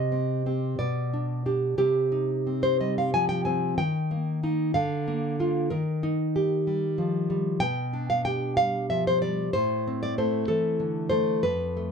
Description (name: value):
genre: romantic piece for solo classical guitar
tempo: 62 BPM (dotted quarters)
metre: 6/8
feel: rubato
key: unclear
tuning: A4 = 441 Hz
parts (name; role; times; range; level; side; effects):
- nylon-string guitar; solo; 0.0-11.9 s; F2 to Ab5; -24 LUFS; equal; none
room: light reverb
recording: dark, warm production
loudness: -24 LUFS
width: side -6 dB against mid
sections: 0.0-11.9 A section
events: none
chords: 0.0 Cm; 0.8 G/B; 1.8 Cm; 3.8 Eb; 4.7 Bb/D; 5.7 Eb; 7.6 G/B; 9.5 Am